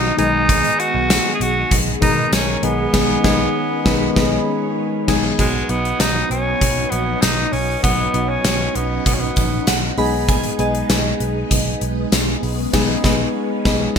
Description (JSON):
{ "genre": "1980s-style pop", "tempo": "98 BPM", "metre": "4/4", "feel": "straight", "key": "G# minor", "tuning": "A4 = 439 Hz", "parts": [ { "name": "breathy tenor saxophone", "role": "melody", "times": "0.0-9.7 s", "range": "G#3 to G#4", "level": "-21 LUFS", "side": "right 1 dB", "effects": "none" }, { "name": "soft electric-piano-like synth keys", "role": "accompaniment", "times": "0.0-14.0 s", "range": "D#3 to B4", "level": "-22 LUFS", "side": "left 3 dB", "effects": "chorus" }, { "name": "phased string machine", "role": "sustained chords", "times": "0.0-14.0 s", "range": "F#3 to D#5", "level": "-26 LUFS", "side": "equal", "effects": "ensemble chorus, phaser" }, { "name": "vintage muted picked electric bass", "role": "bass", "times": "0.0-14.0 s", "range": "A#1 to B2", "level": "-24 LUFS", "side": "right 1 dB", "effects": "none" }, { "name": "gated 80s drum kit", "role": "drums", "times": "0.2-14.0 s", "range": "crash cymbal, hi-hat, kick drum, snare drum, tambourine", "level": "-19 LUFS", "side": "equal", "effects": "gated reverb" }, { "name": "glassy synth bell", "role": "second line", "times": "9.7-11.8 s", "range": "D#5 to B5", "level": "-26 LUFS", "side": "right 6 dB", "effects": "chorus, digital delay" } ], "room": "moderate plate reverb, RT60 2.2 s", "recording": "bright 1980s-style digital production", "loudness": "-15 LUFS", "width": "side -7 dB against mid", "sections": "0.0-5.4 A section; 5.4-14.0 B section", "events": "band accent 2.9-5.4, 12.7-14.0", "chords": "0.2 G#m/B; 5.4 B; 10.0 G#m/B" }